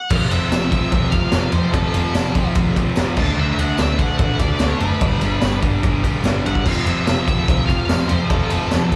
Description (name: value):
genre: garage rock duo or trio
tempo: 146 BPM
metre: 4/4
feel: straight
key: unclear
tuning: A4 = 436 Hz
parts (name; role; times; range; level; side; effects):
- octave-fuzz lead guitar; melody; 0.0-9.0 s; A4 to A5; -28 LUFS; equal; distortion
- thick fuzz guitar; riff; 0.1-8.9 s; F2 to D4; -24 LUFS; equal; distortion, slapback echo
- hollow-body short-scale picked electric bass; bass; 0.1-9.0 s; F1 to F2; -25 LUFS; equal; none
- raw garage drum kit; drums; 0.1-9.0 s; crash cymbal, kick drum, ride cymbal, snare drum; -22 LUFS; equal; none
- tambourine; percussion; 0.5-8.8 s; none; -42 LUFS; equal; none
room: little or no reverb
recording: live gig heard through the venue's PA, club reverb, lossy compression artefacts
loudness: -18 LUFS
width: mono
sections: 0.1-9.0 A section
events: none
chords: 0.1 F; 3.2 D; 5.0 G; 6.7 F